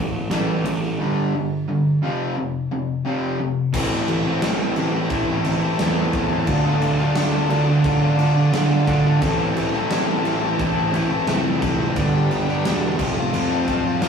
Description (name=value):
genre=quiet-loud alternative rock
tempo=88 BPM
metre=4/4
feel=straight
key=A minor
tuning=A4 = 440 Hz
part: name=crunchy overdriven guitar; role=riff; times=0.0-14.1 s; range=F2 to F4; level=-24 LUFS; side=left 4 dB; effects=none
part: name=overdriven semi-hollow guitar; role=riff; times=0.0-14.1 s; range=F2 to F4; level=-24 LUFS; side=right 5 dB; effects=none
part: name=fuzz picked electric bass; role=bass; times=0.0-14.1 s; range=E1 to D3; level=-22 LUFS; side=equal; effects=overdrive
part: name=huge arena drum kit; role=drums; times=0.3-14.1 s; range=crash cymbal, kick drum, ride cymbal, snare drum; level=-26 LUFS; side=equal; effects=none
part: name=rich chamber string section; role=sustained chords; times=3.7-14.1 s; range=D4 to A5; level=-29 LUFS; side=left 7 dB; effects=none
room=moderate studio reverb, RT60 0.7 s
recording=rough rehearsal-room recording, warm saturation, studio reverb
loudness=-18 LUFS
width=side -6 dB against mid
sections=0.0-3.7 A section; 3.7-14.1 B section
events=none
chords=0.0 A5; 1.0 G5; 2.0 F5; 3.7 Am; 6.5 Dm; 9.2 Am; 12.0 G; 13.0 F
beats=0.31 | 1.00 1.68 2.37 3.06 | 3.74 4.43 5.11 5.79 | 6.48 7.16 7.85 8.53 | 9.22 9.90 10.59 11.28 | 11.96 12.65 13.34 14.02